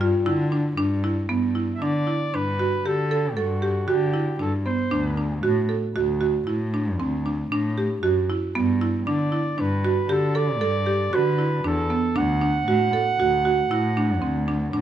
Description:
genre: contemporary instrumental, chamber music in an uneven meter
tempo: 116 BPM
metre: 7/4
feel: straight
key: G major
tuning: A4 = 440 Hz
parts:
  - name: warm flugelhorn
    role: melody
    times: 0.0-14.8 s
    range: F#4 to G5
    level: -27 LUFS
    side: right 2 dB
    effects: none
  - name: buzzing marimba with hard mallets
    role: arpeggios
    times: 0.0-14.8 s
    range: B3 to A4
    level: -24 LUFS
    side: right 3 dB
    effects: none
  - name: warm cello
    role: bass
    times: 0.0-14.8 s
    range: D2 to D3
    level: -25 LUFS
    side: left 1 dB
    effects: none
room: light reverb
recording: close, detailed microphones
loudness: -21 LUFS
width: side -10 dB against mid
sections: 0.0-1.3 A section; 1.3-14.8 B section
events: none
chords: 0.0 G5; 4.9 D; 8.5 Gadd9; 12.2 D

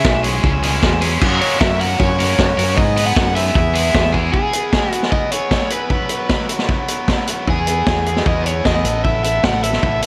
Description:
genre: indie rock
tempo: 153 BPM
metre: 4/4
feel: straight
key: E major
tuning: A4 = 439 Hz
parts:
  - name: overdriven electric guitar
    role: melody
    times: 0.0-10.0 s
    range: G#4 to F#5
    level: -23 LUFS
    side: equal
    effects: harmonic tremolo, slapback echo
  - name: overdriven electric guitar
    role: riff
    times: 0.0-10.1 s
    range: E3 to A4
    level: -26 LUFS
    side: equal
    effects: none
  - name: scooped high-gain guitar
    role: riff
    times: 0.0-4.3 s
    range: F#3 to B4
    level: -25 LUFS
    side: equal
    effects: distortion, subtle chorus, slapback echo
  - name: fretless electric bass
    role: bass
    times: 0.0-4.3, 7.5-10.0 s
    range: A1 to G#2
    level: -23 LUFS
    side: equal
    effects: none
  - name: vintage drum kit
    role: drums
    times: 0.0-10.1 s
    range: crash cymbal, hi-hat, kick drum, snare drum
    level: -20 LUFS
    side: equal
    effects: none
room: light reverb, small room ambience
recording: none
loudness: -17 LUFS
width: mono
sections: 0.0-4.3 A section; 4.3-10.1 B section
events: drum fill 4.1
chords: 0.0 C#m; 1.2 F#; 2.8 G#m; 3.6 E; 5.9 Bsus4; 7.5 E; 8.8 Asus2

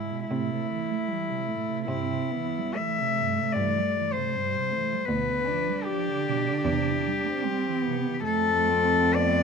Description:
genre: classical, lyrical piece for cello ensemble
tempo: 63-80 BPM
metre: 4/4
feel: rubato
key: unclear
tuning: A4 = 440 Hz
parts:
  - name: warm cello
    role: melody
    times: 0.0-9.4 s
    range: E4 to E5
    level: -27 LUFS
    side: left 6 dB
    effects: none
  - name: dark cello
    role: second line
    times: 0.0-9.4 s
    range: G2 to C4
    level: -32 LUFS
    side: right 12 dB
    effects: none
  - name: dark cello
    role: accompaniment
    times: 0.0-9.4 s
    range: G3 to D4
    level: -31 LUFS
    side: right 2 dB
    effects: none
  - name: rich cello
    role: bass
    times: 0.3-9.4 s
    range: D2 to C3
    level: -31 LUFS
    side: right 2 dB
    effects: none
room: moderate recital hall reverb, RT60 1.5 s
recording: close, detailed microphones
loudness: -24 LUFS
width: side -5 dB against mid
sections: 0.0-9.4 A section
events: none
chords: 0.3 Am; 1.9 C/G; 5.1 G7/D; 6.7 C/E; 8.3 F

